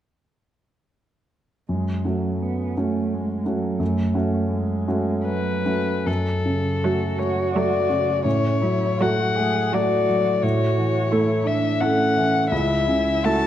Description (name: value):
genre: classical, slow romantic movement for piano quartet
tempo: 71-89 BPM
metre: 3/4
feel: rubato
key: F# minor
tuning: A4 = 440 Hz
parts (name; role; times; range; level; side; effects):
- muted cello; second line; 1.7-13.5 s; F#3 to G#4; -27 LUFS; right 6 dB; none
- clear baby grand piano; accompaniment; 1.7-13.5 s; C#2 to A4; -22 LUFS; equal; none
- muted violin; melody; 5.3-13.5 s; A4 to A5; -23 LUFS; left 6 dB; none
- muted viola; accompaniment; 6.8-13.5 s; F#3 to A3; -28 LUFS; right 4 dB; none
room: wet recital hall reverb, RT60 1.3 s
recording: dark, warm production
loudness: -19 LUFS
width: side -11 dB against mid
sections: 1.7-6.1 A section; 6.1-13.5 B section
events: none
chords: 1.7 F#m; 8.3 F#m/A; 10.4 A; 12.5 A/C#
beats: | 1.69 2.42 3.12 | 3.80 4.51 5.26 | 6.07 6.84 7.55 | 8.25 9.01 9.74 | 10.43 11.12 11.81 | 12.52 13.25